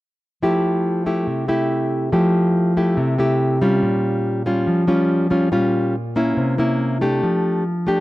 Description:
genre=bossa nova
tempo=141 BPM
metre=4/4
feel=straight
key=F major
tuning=A4 = 440 Hz
part: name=nylon-string guitar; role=solo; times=0.4-8.0 s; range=Bb2 to G4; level=-17 LUFS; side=equal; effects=none
room=studio reverb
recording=dry, close 1970s-style studio recording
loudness=-17 LUFS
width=side -17 dB against mid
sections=0.4-7.2 A section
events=none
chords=0.4 Fmaj9; 3.8 Bbm6; 6.4 C7b9; 7.2 F69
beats=| 0.43 0.85 1.28 1.70 | 2.13 2.55 2.98 3.40 | 3.83 4.25 4.67 5.10 | 5.53 5.95 6.38 6.80 | 7.22 7.65

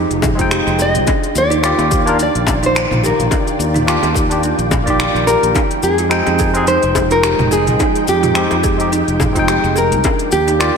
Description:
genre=sunset chillout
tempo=107 BPM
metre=4/4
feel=swing 55% on 16ths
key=F dorian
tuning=A4 = 439 Hz
part: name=nylon-string guitar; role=melody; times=0.0-10.8 s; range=G4 to Eb5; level=-18 LUFS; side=left 1 dB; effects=ping-pong delay, slapback echo
part: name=soft string machine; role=sustained chords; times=0.0-10.8 s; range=Eb3 to G5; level=-22 LUFS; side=equal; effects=ensemble chorus, vintage 12-bit sampler grit
part: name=kalimba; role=arpeggios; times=0.0-10.7 s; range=D4 to Ab4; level=-21 LUFS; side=right 4 dB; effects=tape echo, slapback echo
part: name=fingered electric bass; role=bass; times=0.0-10.7 s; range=F1 to F2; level=-20 LUFS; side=equal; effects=tube saturation
part: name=deep house drum kit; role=drums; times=0.1-10.7 s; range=finger snaps, hi-hat, shaker, toms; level=-22 LUFS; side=equal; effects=slapback echo
part: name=electronic kick drum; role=drums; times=0.2-10.2 s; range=none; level=-20 LUFS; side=equal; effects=none
part: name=bongos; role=percussion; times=0.2-10.2 s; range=none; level=-24 LUFS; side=left 4 dB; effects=slapback echo
part: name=barky tine electric piano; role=accompaniment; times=0.3-10.8 s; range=Ab3 to G5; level=-20 LUFS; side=left 1 dB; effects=overdrive, auto-pan, tape echo, slapback echo
room=moderate lush hall reverb, RT60 1.9 s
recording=big arena sound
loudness=-12 LUFS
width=side -6 dB against mid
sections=0.0-10.8 A section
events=none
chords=0.0 Fm9; 1.1 Ebmaj9; 5.6 Fm9; 10.0 Ebmaj9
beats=0.51 | 1.07 1.63 2.19 2.75 | 3.32 3.88 4.44 5.00 | 5.56 6.12 6.68 7.24 | 7.80 8.36 8.92 9.48 | 10.04 10.61

